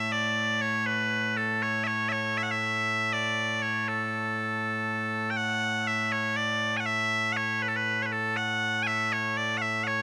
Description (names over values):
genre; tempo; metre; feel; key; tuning
scottish traditional, Scottish pipe music; 80 BPM (dotted quarters); 6/8; straight; A major; A4 = 440 Hz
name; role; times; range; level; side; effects
loud bright bagpipes; solo; 0.0-10.0 s; A2 to G#5; -28 LUFS; equal; none
room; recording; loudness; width
moderate plate reverb, RT60 3.7 s; rough home demo mix; -28 LUFS; mono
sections
0.0-5.4 A section; 5.4-10.0 B section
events
none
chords
none